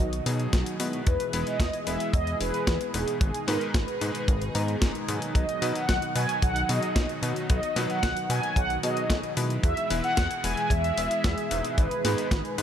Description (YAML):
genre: italo disco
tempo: 112 BPM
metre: 4/4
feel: straight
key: B major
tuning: A4 = 441 Hz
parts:
  - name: mellow synth brass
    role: melody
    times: 0.0-12.6 s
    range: G#4 to G#5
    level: -30 LUFS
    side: right 1 dB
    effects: chorus, tape echo
  - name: warm analog pad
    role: sustained chords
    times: 0.0-12.6 s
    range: B2 to G#4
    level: -33 LUFS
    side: right 1 dB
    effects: chorus
  - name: chorused synth bass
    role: bass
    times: 0.0-12.6 s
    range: E1 to B2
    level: -31 LUFS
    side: equal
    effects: none
  - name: clean 12-bit digital drum machine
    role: drums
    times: 0.1-12.6 s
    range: hi-hat, snare drum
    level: -32 LUFS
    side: left 1 dB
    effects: none
  - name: bright electric grand piano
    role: stabs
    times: 0.3-12.6 s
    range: G#2 to A#5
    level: -35 LUFS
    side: left 3 dB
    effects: none
  - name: kick drum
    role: drums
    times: 0.5-12.4 s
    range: none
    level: -25 LUFS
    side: equal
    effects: none
room: light reverb, digital ambience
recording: none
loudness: -24 LUFS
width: side -9 dB against mid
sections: 0.0-12.6 A section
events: none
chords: 0.0 B; 1.1 E; 3.2 G#m; 5.4 B; 9.6 E; 11.8 G#m